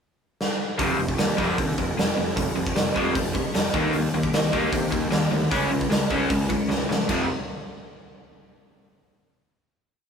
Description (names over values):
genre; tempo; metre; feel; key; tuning
punk rock; 152 BPM; 4/4; straight; unclear; A4 = 441 Hz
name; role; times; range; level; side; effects
big rock drum kit; drums; 0.4-7.2 s; crash cymbal, hi-hat, kick drum, snare drum; -25 LUFS; equal; none
crunchy overdriven guitar; riff; 0.8-7.3 s; F2 to Eb4; -24 LUFS; equal; none
fuzz picked electric bass; bass; 0.8-7.3 s; F1 to C3; -30 LUFS; equal; overdrive
room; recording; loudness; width
light reverb; rough rehearsal-room recording; -21 LUFS; side -6 dB against mid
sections
0.0-0.8 pickup bar; 0.8-7.1 verse; 7.1-8.7 final chord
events
drum fill 0.4-0.8, 6.7-7.1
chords
0.0 N.C.; 0.8 F5; 3.7 Eb5; 5.5 Db5; 7.1 F5